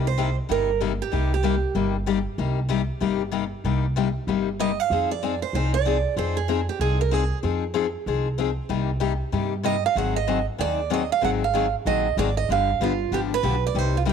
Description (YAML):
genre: acoustic string swing (jazz manouche)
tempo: 190 BPM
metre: 4/4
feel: swing 60% on 8ths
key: C minor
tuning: A4 = 439 Hz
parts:
  - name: picked steel-string acoustic guitar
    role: accompaniment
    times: 0.0-14.1 s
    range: C3 to Ab4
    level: -26 LUFS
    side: left 11 dB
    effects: none
  - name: upright bass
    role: bass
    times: 0.0-14.1 s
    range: G1 to G2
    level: -26 LUFS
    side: right 1 dB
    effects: none
  - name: picked steel-string acoustic guitar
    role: melody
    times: 0.1-1.9, 4.6-7.4, 9.7-14.1 s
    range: F4 to Gb5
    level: -25 LUFS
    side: right 12 dB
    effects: none
room: light reverb, small room reverb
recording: 1960s-style stereo with parts hard left and right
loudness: -21 LUFS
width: side -7 dB against mid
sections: 0.0-14.1 A section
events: none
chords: 0.0 Cm7; 4.9 Fm7; 8.7 Cm7; 10.0 Ab7; 12.5 G7